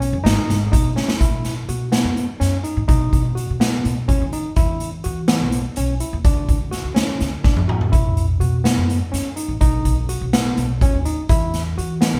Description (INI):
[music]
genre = progressive instrumental, band music in an uneven meter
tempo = 250 BPM (eighths)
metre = 7/8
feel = straight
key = unclear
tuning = A4 = 436 Hz
[part]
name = barky tine electric piano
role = arpeggios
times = 0.0-12.2 s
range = B3 to F#4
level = -27 LUFS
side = equal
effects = none
[part]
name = upright bass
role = bass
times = 0.0-12.2 s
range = G#1 to E3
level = -25 LUFS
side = equal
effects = none
[part]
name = street-band drum kit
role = drums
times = 0.0-12.1 s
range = hi-hat, kick drum, snare drum, toms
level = -22 LUFS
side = equal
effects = none
[sound]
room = moderate large studio reverb, RT60 1.0 s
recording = band playing live in one room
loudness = -19 LUFS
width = mono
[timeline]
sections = 0.0-1.2 A section; 1.2-12.2 B section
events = drum fill 1.0, 7.4-7.9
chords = 0.0 B; 1.2 Bsus4; 2.9 B; 4.6 E5; 6.2 Dmaj7; 7.9 Bsus4; 9.6 B; 11.3 Esus2